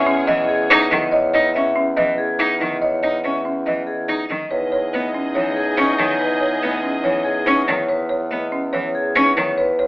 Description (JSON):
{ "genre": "classical, minimalist pattern music", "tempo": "142 BPM", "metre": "4/4", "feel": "straight", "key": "E major", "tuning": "A4 = 441 Hz", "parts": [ { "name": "vibraphone with medium hard mallets", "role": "melody", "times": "0.0-9.8 s", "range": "G#4 to E5", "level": "-23 LUFS", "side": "left 1 dB", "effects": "none" }, { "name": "warm clarinet", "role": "second line", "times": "0.0-0.9, 4.5-7.6 s", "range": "C#4 to D#4", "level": "-27 LUFS", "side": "equal", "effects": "none" }, { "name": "warm studio violin section", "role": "sustained chords", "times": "0.0-0.9, 4.5-7.6 s", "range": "G#4 to D#5", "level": "-26 LUFS", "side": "left 1 dB", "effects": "none" }, { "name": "mellow bassoon", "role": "bass", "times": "0.0-9.9 s", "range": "E2", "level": "-24 LUFS", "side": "equal", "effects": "none" }, { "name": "folk marimba with medium mallets", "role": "arpeggios", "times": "0.1-9.9 s", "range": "C#4 to D#5", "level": "-23 LUFS", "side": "right 1 dB", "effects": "none" }, { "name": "rich cello", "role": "accompaniment", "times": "0.3-9.5 s", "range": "D#3 to D#4", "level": "-18 LUFS", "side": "equal", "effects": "none" } ], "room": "moderate large studio reverb, RT60 0.9 s", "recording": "AM radio sound", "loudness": "-16 LUFS", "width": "side -23 dB against mid", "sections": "0.0-9.9 A section", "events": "none", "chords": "0.0 C#m/E; 4.5 Emaj7" }